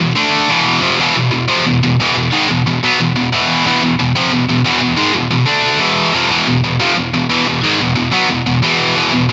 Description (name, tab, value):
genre	metal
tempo	181 BPM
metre	4/4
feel	straight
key	E phrygian dominant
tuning	A4 = 439 Hz
part	scooped high-gain guitar	solo	0.0-9.3 s	E2 to D4	-13 LUFS	equal	distortion, tape echo
room	light reverb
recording	nothing above 7.8 kHz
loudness	-13 LUFS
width	mono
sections	0.0-9.3 A section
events	none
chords	0.2 D5; 0.5 E; 5.5 D5; 5.8 E5